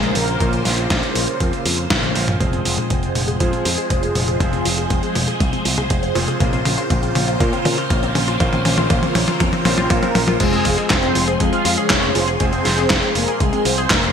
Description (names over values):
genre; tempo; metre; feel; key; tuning
italo disco; 120 BPM; 4/4; straight; unclear; A4 = 440 Hz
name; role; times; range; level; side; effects
mellow synth brass; melody; 0.0-0.6, 9.7-14.1 s; Ab3 to F5; -22 LUFS; equal; chorus, ping-pong delay
phased string machine; sustained chords; 0.0-14.1 s; Db3 to C6; -23 LUFS; equal; ensemble chorus, phaser
clear electric grand piano; stabs; 0.0-14.1 s; Bb2 to C5; -27 LUFS; right 2 dB; ping-pong delay
picked electric bass with an envelope filter; bass; 0.0-14.1 s; F1 to Bb2; -23 LUFS; equal; none
dusty soul sampler-style drum kit; drums; 0.0-14.1 s; crash cymbal, handclaps, hi-hat, snare drum, toms; -20 LUFS; equal; overdrive, studio reverb, gated reverb
electronic kick drum; drums; 0.4-14.0 s; none; -22 LUFS; equal; overdrive, studio reverb
analog pluck; arpeggios; 2.4-14.1 s; Ab3 to Ab4; -26 LUFS; left 3 dB; chorus, ping-pong delay
room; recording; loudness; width
moderate lush hall reverb, RT60 2.2 s; bright 1980s-style digital production; -15 LUFS; side -7 dB against mid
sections
0.0-2.4 A section; 2.4-10.4 B section; 10.4-14.1 C section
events
drum fill 1.9-2.4, 2.4-10.4; filter sweep on synth arpeggio sound 2.4-10.4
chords
0.0 Bbmadd9; 2.4 Fm; 6.4 Bbmadd9; 10.4 Fm